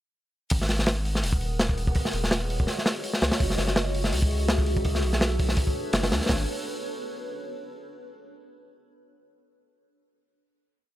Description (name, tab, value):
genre	drum and bass, jungle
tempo	166 BPM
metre	4/4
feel	swing 54% on 16ths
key	G# dorian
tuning	A4 = 440 Hz
part	granular cloud pad	sustained chords	1.1-6.5 s	D4 to F#5	-34 LUFS	equal	built-in reverb, vintage 12-bit sampler grit
part	saturated sub bass	bass	0.5-6.5 s	D#1 to D2	-28 LUFS	equal	none
part	crunchy breakbeat drum kit	drums	0.5-6.4 s	hi-hat, kick drum, snare drum	-25 LUFS	equal	none
room	small room ambience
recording	none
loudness	-23 LUFS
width	side -14 dB against mid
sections	0.5-6.3 drop; 6.3-7.7 final chord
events	drop 0.5-6.3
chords	0.5 G#m9; 2.0 D#m9; 3.4 F#m9; 4.8 Bm9; 6.3 G#m9